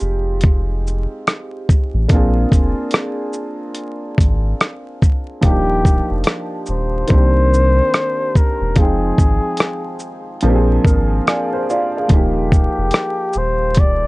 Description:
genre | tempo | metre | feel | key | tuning
lo-fi hip hop | 72 BPM | 4/4 | swing 62% on 16ths | Eb major | A4 = 440 Hz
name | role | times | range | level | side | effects
warm upright piano | accompaniment | 0.0-14.1 s | Eb3 to Ab5 | -21 LUFS | right 1 dB | cassette tape, low-pass filter
soft dub sub bass | bass | 0.0-14.1 s | Eb1 to C2 | -18 LUFS | equal | none
dusty soul sampler-style drum kit | drums | 0.0-14.0 s | hi-hat, kick drum, rim click, shaker | -14 LUFS | equal | none
breathy flugelhorn | melody | 5.5-14.1 s | G4 to D5 | -21 LUFS | left 2 dB | low-pass filter
room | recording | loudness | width
little or no reverb | dry, gritty hardware recording, vinyl crackle, nothing above 10.4 kHz | -14 LUFS | side -22 dB against mid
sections
0.0-5.4 A section; 5.4-14.1 B section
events
none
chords
0.0 Fm7; 2.1 Bb7; 5.4 Ebmaj7; 7.1 Cm7; 8.8 Fm7; 10.4 Bb9; 12.1 Eb

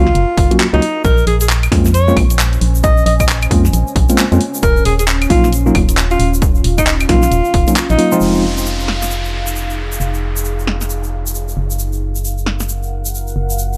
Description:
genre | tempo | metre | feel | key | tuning
UK garage, two-step garage | 134 BPM | 4/4 | swing 62% on 16ths | unclear | A4 = 440 Hz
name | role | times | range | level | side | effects
clear alto saxophone | melody | 0.0-8.2 s | Eb4 to Eb5 | -20 LUFS | equal | delay
mellow tine electric piano | stabs | 0.0-8.4 s | F3 to Gb4 | -19 LUFS | equal | low-pass filter, delay
organ-like FM bass | bass | 0.0-13.8 s | Eb1 to F2 | -19 LUFS | equal | none
deep dark ambient pad | texture | 0.2-13.8 s | Db4 to Bb5 | -28 LUFS | equal | chorus, built-in reverb, sidechain pumping
garage drum kit | drums | 0.1-12.7 s | claves, handclaps, hi-hat, snare drum | -21 LUFS | equal | studio ambience
electronic kick drum | drums | 0.4-7.6 s | none | -18 LUFS | equal | overdrive, studio ambience
egg shaker | percussion | 1.0-13.8 s | none | -28 LUFS | equal | none
downlifter | sound effects | 8.2-11.8 s | none | -29 LUFS | equal | none
room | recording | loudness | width
digital ambience | none | -14 LUFS | mono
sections
0.0-8.2 A section; 8.2-13.8 B section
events
fade-in on ambient pad 0.0-8.2; filter sweep on tine electric piano 0.0-8.2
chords
0.0 Gbmaj7; 1.0 Bbm9; 4.4 Ebm9; 8.2 Fm7; 11.6 Gbmaj7

